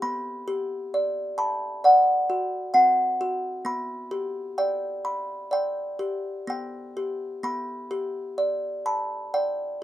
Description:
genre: children's music.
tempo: 62-66 BPM.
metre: 4/4.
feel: rubato.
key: G major.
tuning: A4 = 440 Hz.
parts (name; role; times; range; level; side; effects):
music box; solo; 0.0-9.8 s; B3 to B5; -24 LUFS; equal; none.
room: moderate studio reverb, RT60 0.6 s.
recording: minimal, uncompressed stereo recording.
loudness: -24 LUFS.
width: side -13 dB against mid.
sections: 0.0-7.4 A section; 7.4-9.8 A section.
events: none.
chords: 0.0 G; 1.8 D7; 3.7 G.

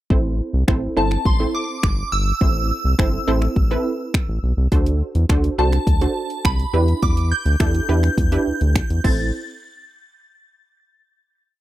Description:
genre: dance-pop.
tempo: 104 BPM.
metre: 4/4.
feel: straight.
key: A dorian.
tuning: A4 = 440 Hz.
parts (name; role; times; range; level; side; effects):
wide unison pluck; accompaniment; 0.1-9.3 s; C4 to C5; -24 LUFS; right 3 dB; sidechain pumping.
round analog bass; bass; 0.1-9.3 s; G1 to E2; -19 LUFS; equal; sidechain pumping.
house drum kit; drums; 0.1-9.2 s; crash cymbal, finger snaps, hi-hat, kick drum; -19 LUFS; equal; none.
shimmering bell with halo; melody; 1.0-9.3 s; A5 to A6; -26 LUFS; equal; ensemble chorus, phaser.
room: little or no reverb.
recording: dry, close 1970s-style studio recording.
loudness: -17 LUFS.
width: side -15 dB against mid.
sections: 0.1-9.3 verse; 9.3-11.6 final hit.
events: none.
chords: 0.1 Am; 4.7 D7; 6.7 Em7; 9.0 Am; 9.3 N.C..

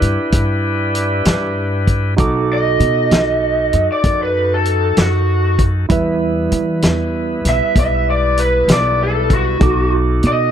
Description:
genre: slow blues.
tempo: 65 BPM (dotted quarters).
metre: 12/8.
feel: straight.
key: E minor.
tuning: A4 = 439 Hz.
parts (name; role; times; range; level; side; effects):
barky tine electric piano; accompaniment; 0.0-10.5 s; G3 to D6; -22 LUFS; right 5 dB; medium stereo tremolo.
bright tonewheel organ; sustained chords; 0.0-10.5 s; G3 to B4; -24 LUFS; left 1 dB; overdrive, slow rotary speaker.
upright bass; bass; 0.0-10.5 s; B1 to E3; -18 LUFS; equal; none.
warm soul drum kit; drums; 0.0-10.4 s; hi-hat, kick drum, snare drum; -17 LUFS; equal; none.
lead guitar through a small cranked amp; melody; 2.5-10.5 s; F#4 to E5; -16 LUFS; equal; overdrive.
room: light reverb, small room ambience.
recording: none.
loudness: -13 LUFS.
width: side -9 dB against mid.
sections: 0.0-10.5 A section.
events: none.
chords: 0.0 Cmaj7 (rootless); 2.2 B7#9; 5.9 Em; 9.6 B7#9.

